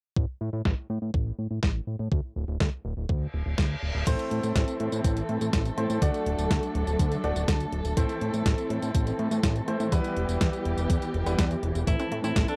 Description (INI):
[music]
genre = italo disco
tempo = 123 BPM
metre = 4/4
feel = straight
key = A dorian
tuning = A4 = 442 Hz
[part]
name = fat analog bass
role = bass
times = 0.2-12.5 s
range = D1 to A2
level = -32 LUFS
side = equal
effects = none
[part]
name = electronic kick drum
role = drums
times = 0.2-12.5 s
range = none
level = -29 LUFS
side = equal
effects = none
[part]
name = clean 12-bit digital drum machine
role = drums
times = 0.7-12.6 s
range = crash cymbal, hi-hat, snare drum, tambourine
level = -35 LUFS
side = equal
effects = low-pass filter on snare, low-pass filter on hats, low-pass filter on perc, low-pass filter on cymbals, low-pass filter on room
[part]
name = reverse cymbal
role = sound effects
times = 3.3-4.1 s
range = none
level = -38 LUFS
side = equal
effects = none
[part]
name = dark studio string section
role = sustained chords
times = 4.1-12.6 s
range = E3 to A4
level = -35 LUFS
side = equal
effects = none
[part]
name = clear baby grand piano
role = stabs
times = 4.1-11.4 s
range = G3 to D5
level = -35 LUFS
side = equal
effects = tape echo
[part]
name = bright alto saxophone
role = melody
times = 11.9-12.6 s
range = D4 to E4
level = -34 LUFS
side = equal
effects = none
[part]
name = analog pluck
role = arpeggios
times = 11.9-12.6 s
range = A3 to A4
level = -36 LUFS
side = equal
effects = chorus
[sound]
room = little or no reverb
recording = dry, close 1970s-style studio recording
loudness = -28 LUFS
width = mono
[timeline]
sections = 0.2-4.1 A section; 4.1-12.6 B section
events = filter sweep on drum 0.2-4.1; reverse cymbal 3.3-4.1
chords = 0.2 N.C.; 4.1 Am; 6.0 D; 8.0 Am; 9.9 Em; 11.9 Am